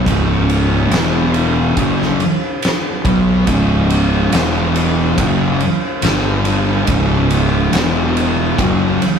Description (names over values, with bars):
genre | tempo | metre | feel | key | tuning
stoner and doom metal | 70 BPM | 4/4 | straight | unclear | A4 = 440 Hz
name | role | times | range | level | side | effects
thick fuzz guitar | riff | 0.0-9.0 s | C#2 to B3 | -17 LUFS | left 5 dB | distortion
thick fuzz guitar | riff | 0.0-9.0 s | C#2 to B3 | -19 LUFS | right 8 dB | distortion
fuzz fingered electric bass | bass | 0.0-9.0 s | C#1 to B1 | -19 LUFS | equal | overdrive
oversized low-tuned drum kit | drums | 0.1-9.2 s | kick drum, ride cymbal, snare drum | -19 LUFS | equal | none
room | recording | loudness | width
light reverb | rough rehearsal-room recording | -13 LUFS | side -7 dB against mid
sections
0.0-9.2 A section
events
none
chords
0.0 C#5; 0.9 E5; 1.8 C#5; 4.3 E5; 5.2 F#5; 6.0 G5; 6.9 C#5; 7.7 E5; 8.6 C#5